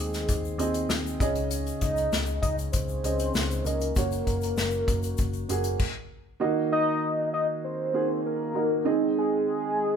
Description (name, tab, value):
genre	piano-driven pop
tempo	98 BPM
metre	4/4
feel	straight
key	unclear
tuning	A4 = 440 Hz
part	warm velvety synth lead	melody	0.0-10.0 s	Ab4 to Eb5	-28 LUFS	left 1 dB	chorus, tremolo
part	dark upright piano	accompaniment	0.0-10.0 s	Db3 to Eb5	-29 LUFS	right 5 dB	none
part	mellow tonewheel organ	sustained chords	0.0-10.0 s	Db3 to C5	-38 LUFS	left 5 dB	slow rotary speaker
part	vintage muted picked electric bass	bass	0.0-5.7 s	Gb1 to Eb2	-31 LUFS	equal	none
part	unplugged drum kit	drums	0.1-5.9 s	crash cymbal, hi-hat, kick drum, snare drum	-30 LUFS	left 1 dB	none
part	tube shaker	percussion	0.1-5.8 s	none	-43 LUFS	left 9 dB	none
room	moderate large studio reverb, RT60 1.1 s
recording	band playing live in one room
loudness	-24 LUFS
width	side -7 dB against mid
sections	0.0-6.4 A section; 6.4-10.0 A section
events	stop 5.8-6.4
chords	0.0 Ab/Eb; 1.2 Dbsus2; 4.0 Gb; 6.4 Ebm; 8.9 Ab/Eb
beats	0.28 0.90 | 1.51 2.12 2.73 3.35 | 3.96 4.57 5.18 5.80 | 6.41 7.02 7.63 8.25 | 8.86 9.47